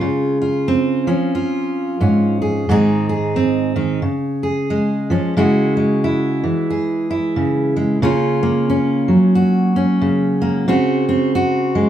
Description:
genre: folk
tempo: 90 BPM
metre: 4/4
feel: swing 60% on 8ths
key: Db major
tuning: A4 = 441 Hz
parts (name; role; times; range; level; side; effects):
- fingerpicked steel-string acoustic guitar; solo; 0.0-11.9 s; Ab2 to Ab4; -15 LUFS; right 1 dB; none
room: moderate studio reverb, RT60 0.5 s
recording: small room ambience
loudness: -15 LUFS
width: side -10 dB against mid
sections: 0.0-5.4 A section; 5.4-11.9 B section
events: none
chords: 0.0 Dbmaj7; 2.7 Ab; 4.0 Db; 5.4 Eadd9/Db; 8.0 Gbmaj7/Db; 10.7 Ab7/Db (rootless)

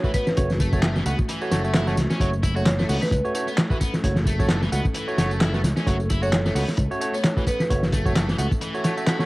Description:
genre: breakbeat, breaks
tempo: 131 BPM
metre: 4/4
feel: swing 56% on 16ths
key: F# minor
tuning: A4 = 439 Hz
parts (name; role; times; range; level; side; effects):
- dark analog pad; sustained chords; 0.0-9.3 s; A3 to A4; -33 LUFS; equal; chorus, sidechain pumping, cassette tape
- distorted electric guitar; riff; 0.0-9.3 s; E3 to F#4; -33 LUFS; left 1 dB; overdrive, cassette tape, analog delay
- barky tine electric piano; stabs; 0.0-9.3 s; A3 to F#5; -29 LUFS; right 2 dB; overdrive, cassette tape, analog delay
- cloth-damped thuddy drum kit; drums; 0.0-9.3 s; hi-hat, kick drum, snare drum; -23 LUFS; equal; cassette tape
- electronic tambourine and handclaps; drums; 0.0-9.3 s; none; -34 LUFS; equal; overdrive, cassette tape
- marimba with hard mallets; melody; 0.1-3.2, 6.2-7.7 s; B4 to C#5; -29 LUFS; right 1 dB; telephone sound, analog delay
- fingered electric bass; bass; 0.4-8.5 s; F#1 to C#2; -24 LUFS; equal; none
room: light reverb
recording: home recording on cassette, vinyl crackle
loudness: -20 LUFS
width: side -20 dB against mid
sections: 0.0-9.3 A section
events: none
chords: 0.0 F#m

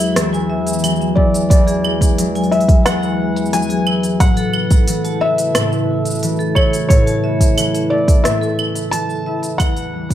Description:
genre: folktronica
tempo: 89 BPM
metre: 4/4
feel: straight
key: A major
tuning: A4 = 435 Hz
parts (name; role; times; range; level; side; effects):
- felt-muted upright piano; melody; 0.0-10.1 s; C#5 to A5; -21 LUFS; left 1 dB; plate reverb
- vibraphone with hard mallets; second line; 0.0-9.6 s; G#4 to A5; -25 LUFS; right 2 dB; ping-pong delay, plate reverb
- warbly tape-like pad; sustained chords; 0.0-10.1 s; C#3 to B4; -23 LUFS; equal; chorus, built-in reverb, plate reverb
- concert harp; arpeggios; 0.0-10.1 s; E2 to F#4; -20 LUFS; left 2 dB; plate reverb
- organic electronic drum kit; drums; 0.0-10.1 s; cabasa, claves, hi-hat, rim click; -22 LUFS; right 1 dB; overdrive
- electronic kick drum; drums; 1.2-10.1 s; none; -13 LUFS; equal; overdrive
room: moderate studio ambience, RT60 0.5 s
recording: none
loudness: -13 LUFS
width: side -11 dB against mid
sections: 0.0-10.1 A section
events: fade-out 7.8-10.1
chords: 0.0 Eadd9; 4.2 Aadd9; 9.6 Emadd9

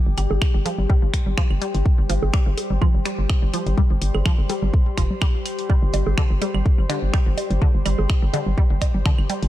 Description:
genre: minimal techno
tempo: 125 BPM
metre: 4/4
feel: swing 54% on 16ths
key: unclear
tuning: A4 = 440 Hz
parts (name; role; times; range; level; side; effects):
- warbly tape-like pad; texture; 0.0-9.5 s; G3 to D6; -29 LUFS; left 2 dB; chorus, built-in reverb, sidechain pumping
- hollow knocking FM bass; bass; 0.1-9.5 s; F1 to G1; -21 LUFS; equal; sidechain pumping
- resonant blip pluck; riff; 0.2-9.3 s; D3 to G3; -30 LUFS; left 1 dB; phaser, sidechain pumping, ping-pong delay
- house drum kit; drums; 0.2-9.5 s; finger snaps, hi-hat; -30 LUFS; equal; none
- claves, bongos and congas; percussion; 0.2-9.4 s; none; -29 LUFS; right 4 dB; digital delay
- electronic kick drum; drums; 0.4-9.2 s; none; -18 LUFS; equal; none
room: digital ambience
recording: dark, warm production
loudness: -18 LUFS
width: side -14 dB against mid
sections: 0.0-9.5 A section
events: none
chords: 0.0 G5

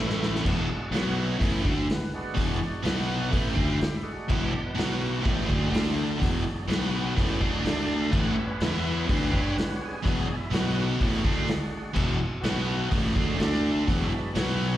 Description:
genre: blues rock power trio and southern rock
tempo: 125 BPM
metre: 4/4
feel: straight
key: E mixolydian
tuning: A4 = 444 Hz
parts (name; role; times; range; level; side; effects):
- overdriven tonewheel organ; sustained chords; 0.0-14.8 s; D3 to F#5; -35 LUFS; right 2 dB; slow rotary speaker
- biting overdriven guitar; riff; 0.0-14.8 s; E2 to G4; -27 LUFS; equal; none
- fuzz fingered electric bass; bass; 0.0-14.8 s; E1 to G2; -31 LUFS; equal; overdrive
- vintage drum kit; drums; 0.1-14.5 s; crash cymbal, hi-hat, kick drum, snare drum; -29 LUFS; equal; none
room: light reverb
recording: live gig heard through the venue's PA, recital hall reverb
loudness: -24 LUFS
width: side -13 dB against mid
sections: 0.4-14.8 A section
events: drum fill 0.0-0.4; tonewheel organ solo 0.0-14.8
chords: 0.4 E7; 0.9 B5; 1.4 E7; 2.8 B5; 3.3 E7; 4.8 B5; 5.2 E7; 5.7 D5; 6.2 E7; 6.7 B5; 7.2 E7; 7.6 D5; 8.1 A7; 8.6 E5; 9.1 A7; 10.0 E7; 10.5 B5; 11.0 E7; 12.4 B5; 12.9 E7; 13.4 D5; 13.9 E7

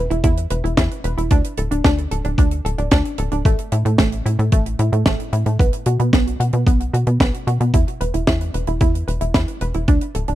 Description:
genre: italo disco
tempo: 112 BPM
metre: 4/4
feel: straight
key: unclear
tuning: A4 = 440 Hz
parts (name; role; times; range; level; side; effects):
- analog pluck; arpeggios; 0.0-10.3 s; A3 to B4; -23 LUFS; right 2 dB; chorus, phaser, tape echo
- tight sequencer bass; bass; 0.0-10.3 s; D1 to B2; -20 LUFS; equal; none
- tight funk drum kit; drums; 0.1-10.3 s; hi-hat, snare drum; -23 LUFS; equal; none
- electronic kick drum; drums; 0.2-10.0 s; none; -18 LUFS; equal; none
room: small room ambience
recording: dry, close 1970s-style studio recording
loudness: -16 LUFS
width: side -14 dB against mid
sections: 0.0-10.3 A section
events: none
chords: 0.0 E5; 1.3 D5; 3.5 A5; 5.6 B5; 7.7 E5

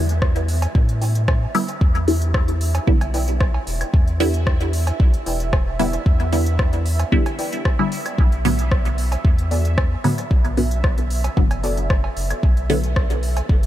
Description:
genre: dub techno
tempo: 113 BPM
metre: 4/4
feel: straight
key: E minor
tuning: A4 = 439 Hz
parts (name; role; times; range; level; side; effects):
- filtered dub chord stab; stabs; 0.0-13.0 s; A2 to E4; -24 LUFS; equal; phaser, sidechain pumping, dub echo
- warm sub bass; bass; 0.0-13.7 s; E1 to A2; -21 LUFS; equal; sidechain pumping
- bubbling stepped-filter texture; texture; 0.0-13.7 s; E5; -33 LUFS; right 6 dB; chorus, built-in reverb, sidechain pumping
- deep house drum kit; drums; 0.1-13.7 s; hi-hat, rim click; -30 LUFS; left 1 dB; dub echo
- electronic kick drum; drums; 0.2-13.6 s; none; -17 LUFS; equal; none
- cowbell and claves; percussion; 0.6-13.5 s; none; -35 LUFS; right 4 dB; sidechain pumping on perc, dub echo
- warbly dusty pluck; riff; 1.0-11.8 s; B3 to G5; -34 LUFS; left 1 dB; chorus, sidechain pumping, dub echo
room: light reverb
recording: none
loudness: -17 LUFS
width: side -13 dB against mid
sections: 0.0-13.7 A section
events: none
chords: 0.0 Em7; 8.2 Bm7

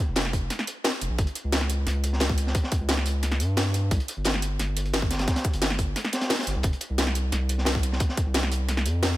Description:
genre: liquid drum and bass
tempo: 176 BPM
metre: 4/4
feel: straight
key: unclear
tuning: A4 = 440 Hz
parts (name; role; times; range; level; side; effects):
- saturated sub bass; bass; 0.1-9.2 s; F1 to G2; -26 LUFS; equal; none
- crunchy breakbeat drum kit; drums; 0.2-9.1 s; hi-hat, snare drum; -32 LUFS; equal; high-pass filter on hats, high-pass filter on snare, high-pass filter on room
- drum and bass drum kit; drums; 0.2-9.1 s; hi-hat, snare drum; -28 LUFS; equal; overdrive
- electronic kick drum; drums; 0.3-8.2 s; none; -25 LUFS; equal; overdrive
room: small room ambience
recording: none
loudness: -23 LUFS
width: side -16 dB against mid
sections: 0.0-9.2 A section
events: none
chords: none

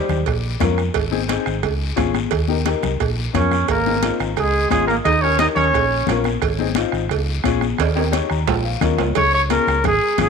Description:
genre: latin, cumbia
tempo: 176 BPM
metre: 4/4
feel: straight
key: unclear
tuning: A4 = 440 Hz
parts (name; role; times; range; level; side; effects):
- mellow trumpet; melody; 0.0-0.3, 3.4-6.2, 9.2-10.3 s; G4 to Eb5; -19 LUFS; equal; none
- growling clarinet; second line; 0.0-0.3, 3.4-6.2 s; G3 to Eb4; -26 LUFS; right 12 dB; none
- warm upright piano; accompaniment; 0.0-10.3 s; C4 to Bb5; -25 LUFS; left 11 dB; none
- hollow-body short-scale fingered electric bass; bass; 0.1-10.3 s; Ab1 to F2; -22 LUFS; equal; none
- bombo; percussion; 0.1-10.3 s; none; -27 LUFS; right 5 dB; none
- congas; percussion; 0.1-10.3 s; none; -26 LUFS; left 12 dB; none
- guiro; percussion; 0.1-10.3 s; none; -33 LUFS; left 12 dB; none
- cowbell and timbales; percussion; 0.3-10.3 s; none; -26 LUFS; right 14 dB; none
room: moderate plate reverb, RT60 2.4 s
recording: 1960s-style stereo with parts hard left and right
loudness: -16 LUFS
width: side -6 dB against mid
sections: 0.0-9.2 A section; 9.2-10.3 B section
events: drum fill 7.8-9.2; upright piano fill 8.1-9.2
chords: 0.3 Bbm; 1.0 Ab; 1.6 Db; 2.3 Eb; 3.0 Bbm; 3.7 Abadd9; 4.4 Db; 5.1 Eb; 5.7 Bbm; 6.4 Ab; 7.1 Db; 7.8 Eb; 8.5 Bbm; 9.2 Db

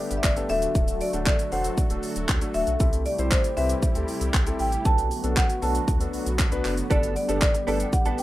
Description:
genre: dance-pop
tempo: 117 BPM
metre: 4/4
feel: straight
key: D mixolydian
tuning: A4 = 440 Hz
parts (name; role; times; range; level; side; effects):
- marimba with medium mallets; melody; 0.0-8.2 s; C5 to A5; -28 LUFS; equal; tape echo, plate reverb
- warm grand piano; accompaniment; 0.0-8.2 s; A3 to C5; -32 LUFS; left 3 dB; sidechain pumping, plate reverb
- sweeping resonant pad; sustained chords; 0.0-8.2 s; C3 to A4; -32 LUFS; equal; chorus, sidechain pumping, plate reverb
- warm sub bass; bass; 0.1-8.1 s; D1 to D2; -29 LUFS; equal; sidechain pumping
- pop drum kit; drums; 0.1-8.2 s; handclaps, hi-hat, kick drum, shaker; -24 LUFS; equal; none
- direct-recorded clean electric guitar; riff; 6.9-8.2 s; B3 to A4; -30 LUFS; right 5 dB; ensemble chorus
room: light reverb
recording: rough home demo mix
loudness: -21 LUFS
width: side -15 dB against mid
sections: 0.0-8.2 A section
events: none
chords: 0.5 D; 2.8 C6; 4.9 Bm7; 6.9 Gadd9

